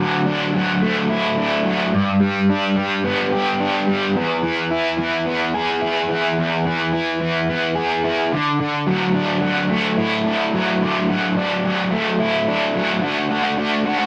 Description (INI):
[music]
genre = rock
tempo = 108 BPM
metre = 4/4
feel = straight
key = unclear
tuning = A4 = 440 Hz
[part]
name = overdriven electric guitar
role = solo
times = 0.0-14.1 s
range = E2 to G#4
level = -19 LUFS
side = equal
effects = harmonic tremolo
[sound]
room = moderate studio reverb, RT60 0.8 s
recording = none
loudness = -19 LUFS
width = mono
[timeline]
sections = 0.0-13.0 A section; 13.0-14.1 B section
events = none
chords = 0.0 Dadd9; 1.9 G; 4.2 E; 8.3 Dadd9; 13.0 D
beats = 0.27 0.83 1.38 | 1.94 2.50 3.05 3.61 | 4.16 4.72 5.27 5.83 | 6.38 6.94 7.49 8.05 | 8.60 9.15 9.71 10.26 | 10.81 11.37 11.92 12.48 | 13.03 13.58